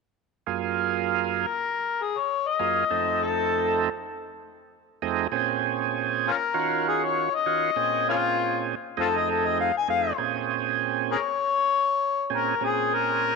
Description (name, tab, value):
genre	blues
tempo	99 BPM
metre	4/4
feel	swing 54% on 16ths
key	Bb minor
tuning	A4 = 441 Hz
part	overdriven tonewheel organ	accompaniment	0.5-13.4 s	F2 to A4	-26 LUFS	right 12 dB	slow rotary speaker
part	mellow harmonica	melody	1.4-13.4 s	Bb3 to G#5	-24 LUFS	left 8 dB	overdrive
room	moderate plate reverb, RT60 2.7 s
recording	1960s-style stereo with parts hard left and right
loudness	-23 LUFS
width	side -4 dB against mid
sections	0.5-10.2 A section; 10.2-13.4 B section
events	none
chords	0.5 Gbmaj7; 2.9 F7#9; 5.3 Bbm7; 6.5 Ebm7; 7.8 Bbm7; 9.0 F7#9; 10.2 Bbm7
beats	| 0.47 1.07 1.68 2.29 | 2.90 3.50 4.11 4.72 | 5.33 5.93 6.54 7.15 | 7.75 8.36 8.97 9.57 | 10.18 10.79 11.39 12.00 | 12.60 13.21